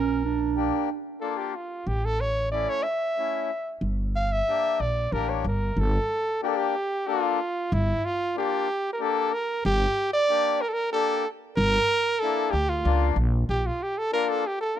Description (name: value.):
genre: klezmer.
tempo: 93 BPM.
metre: 3/4.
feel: straight.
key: G dorian sharp4.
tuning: A4 = 440 Hz.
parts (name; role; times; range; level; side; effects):
clear cornet; melody; 0.0-14.8 s; E4 to F5; -26 LUFS; right 1 dB; none.
dark clarinet; second line; 0.0-1.0 s; C#4 to D4; -26 LUFS; right 10 dB; none.
upright bass; bass; 0.0-13.7 s; G1 to D2; -26 LUFS; equal; none.
accordion; accompaniment; 0.6-14.8 s; A3 to A4; -29 LUFS; left 15 dB; none.
room: small room reverb.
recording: dry, close 1970s-style studio recording.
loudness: -23 LUFS.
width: side -10 dB against mid.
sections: 0.0-5.8 A section; 5.8-14.8 B section.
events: cornet solo 0.0-5.8.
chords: 0.0 Bb; 1.9 A; 3.8 Gm; 13.5 Bb.